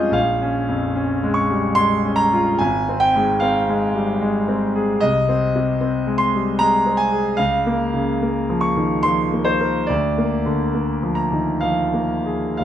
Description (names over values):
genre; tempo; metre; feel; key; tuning
classical, romantic nocturne for solo piano; 57-77 BPM; 3/4; rubato; F minor; A4 = 440 Hz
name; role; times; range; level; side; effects
bright concert grand piano; solo; 0.0-12.6 s; Ab1 to Db6; -17 LUFS; equal; none
room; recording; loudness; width
moderate recital hall reverb, RT60 1.6 s; close, detailed microphones; -17 LUFS; side -10 dB against mid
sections
0.0-12.6 A section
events
none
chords
0.1 Bbm7; 2.6 Fm/Ab; 5.0 Ab/C; 7.4 Bbm/Db; 9.9 Bb7/D